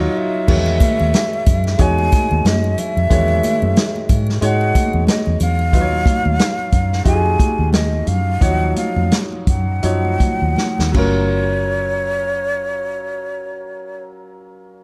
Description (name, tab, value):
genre	lush 1970s-style soul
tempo	77-92 BPM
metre	4/4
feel	swing 58% on 16ths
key	F# major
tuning	A4 = 445 Hz
part	breathy jazz flute	melody	0.0-14.0 s	C#5 to G#5	-24 LUFS	equal	none
part	clear concert grand piano	accompaniment	0.0-14.8 s	D#3 to C#5	-25 LUFS	equal	none
part	vintage muted fingered electric bass	bass	0.0-14.0 s	F#1 to G#2	-21 LUFS	equal	none
part	vintage drum kit	drums	0.5-11.2 s	crash cymbal, hi-hat, kick drum, snare drum	-20 LUFS	equal	none
part	congas	percussion	0.5-11.7 s	none	-29 LUFS	equal	none
part	triangle	percussion	0.5-5.7 s	none	-42 LUFS	equal	none
room	little or no reverb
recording	dark, warm production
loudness	-17 LUFS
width	mono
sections	0.5-11.3 A section; 11.3-14.4 B section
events	band accent 0.0-0.5; slowing down 5.7-11.3; drum fill 10.6-11.3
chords	0.5 Emaj13; 5.7 D#m9; 10.9 F#maj7